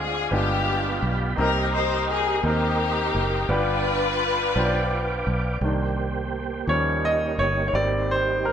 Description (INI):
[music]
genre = slow gospel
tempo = 57 BPM (dotted quarters)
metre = 6/8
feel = straight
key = C minor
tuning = A4 = 440 Hz
[part]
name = warm chamber string section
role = melody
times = 0.0-5.3 s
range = Bb3 to C5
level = -24 LUFS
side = left 3 dB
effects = none
[part]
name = clear concert grand piano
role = accompaniment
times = 0.0-8.5 s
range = G2 to Eb5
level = -26 LUFS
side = equal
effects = none
[part]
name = tonewheel organ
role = sustained chords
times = 0.0-8.5 s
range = G3 to D6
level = -30 LUFS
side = right 4 dB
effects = fast rotary speaker, overdrive, chorus vibrato
[part]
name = fingered electric bass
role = bass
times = 0.0-8.5 s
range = F#1 to Eb2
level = -27 LUFS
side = right 1 dB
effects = none
[sound]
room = moderate large studio reverb, RT60 1.1 s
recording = none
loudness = -21 LUFS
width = side -8 dB against mid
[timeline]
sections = 0.0-5.6 A section; 5.6-8.5 B section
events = grand piano solo 5.6-8.5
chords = 0.3 G7b9; 1.4 Cm7; 3.5 G7; 5.6 Cm7; 6.7 Eb7; 7.7 Abmaj7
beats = 0.32 | 1.38 2.44 | 3.50 4.56 | 5.62 6.67 | 7.73